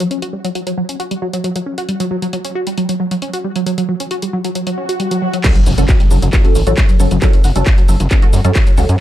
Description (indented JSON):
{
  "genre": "driving peak-time techno",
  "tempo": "135 BPM",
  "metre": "4/4",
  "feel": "straight",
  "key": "F# phrygian",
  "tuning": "A4 = 440 Hz",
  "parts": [
    { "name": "tight sequenced synth", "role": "riff", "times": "0.0-9.0 s", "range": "F#3 to F#4", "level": "-19 LUFS", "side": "equal", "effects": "chorus, phaser, overdrive, sidechain pumping, digital delay" },
    { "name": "punchy analog drum machine", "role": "drums", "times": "0.0-9.0 s", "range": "crash cymbal, handclaps, hi-hat, ride cymbal, shaker", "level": "-24 LUFS", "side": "equal", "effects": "none" },
    { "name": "swell and impact", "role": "sound effects", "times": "4.7-7.2 s", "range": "none", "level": "-22 LUFS", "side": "equal", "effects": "none" },
    { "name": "filtered dub chord stab", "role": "stabs", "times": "5.4-8.9 s", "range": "F#3 to A4", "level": "-21 LUFS", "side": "right 1 dB", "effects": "phaser, analog chorus, sidechain pumping, digital delay" },
    { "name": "electronic kick drum", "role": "drums", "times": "5.4-8.6 s", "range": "none", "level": "-11 LUFS", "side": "equal", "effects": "distortion" },
    { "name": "gritty driven synth bass", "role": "bass", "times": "5.7-9.0 s", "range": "F#1 to F#2", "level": "-14 LUFS", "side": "equal", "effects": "sidechain pumping" }
  ],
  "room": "little or no reverb",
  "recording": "dark, warm production",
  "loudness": "-13 LUFS",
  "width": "side -12 dB against mid",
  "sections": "0.0-5.4 A section; 5.4-9.0 B section",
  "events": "filter sweep on synth arpeggio sound 0.0-5.4; swell 4.7-5.4; drop 5.4-9.0; impact 5.4-7.2",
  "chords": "0.0 F#5; 5.4 F#m"
}